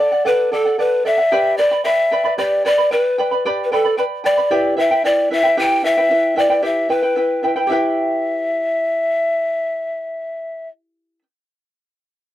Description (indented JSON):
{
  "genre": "andean folk",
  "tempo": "75 BPM (dotted quarters)",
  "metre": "6/8",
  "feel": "straight",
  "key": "E minor pentatonic",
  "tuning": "A4 = 441 Hz",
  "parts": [
    { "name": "breathy mellow large pan pipes", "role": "melody", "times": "0.0-10.7 s", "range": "A4 to G5", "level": "-16 LUFS", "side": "left 1 dB", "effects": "none" },
    { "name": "charango", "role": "accompaniment", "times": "0.0-11.2 s", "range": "E4 to B5", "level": "-20 LUFS", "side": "right 1 dB", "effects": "none" }
  ],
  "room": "light reverb",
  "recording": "dry, close 1970s-style studio recording",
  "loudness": "-15 LUFS",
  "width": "side -13 dB against mid",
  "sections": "0.0-7.7 A section; 7.7-10.9 B section",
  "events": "none",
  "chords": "0.0 D; 1.3 G; 4.5 Em"
}